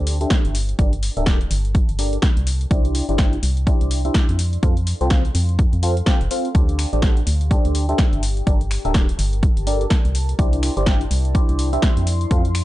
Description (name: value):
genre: piano house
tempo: 125 BPM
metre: 4/4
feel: swing 59% on 16ths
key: unclear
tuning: A4 = 440 Hz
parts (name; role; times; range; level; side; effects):
- barking FM electric piano; riff; 0.0-12.4 s; C4 to G5; -26 LUFS; equal; phaser, sidechain pumping, low-pass filter, tape echo
- organ-like FM bass; bass; 0.0-12.6 s; D1 to F2; -20 LUFS; equal; sidechain pumping
- deep dark ambient pad; texture; 0.2-12.6 s; D4 to C6; -36 LUFS; left 2 dB; chorus, built-in reverb, sidechain pumping
- punchy analog drum machine; drums; 0.1-12.6 s; finger snaps, hi-hat, snare drum; -27 LUFS; equal; overdrive
- electronic kick drum; drums; 0.3-12.4 s; none; -17 LUFS; equal; overdrive
room: digital ambience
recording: dark, warm production, nothing above 10.3 kHz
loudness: -16 LUFS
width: side -16 dB against mid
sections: 0.0-12.6 A section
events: fade-in on ambient pad 0.0-12.6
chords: 0.0 D7sus4; 0.5 Gmadd9; 2.5 Cadd9; 4.4 F; 6.5 D7sus4; 8.2 Gmadd9; 10.1 Cadd9; 12.1 F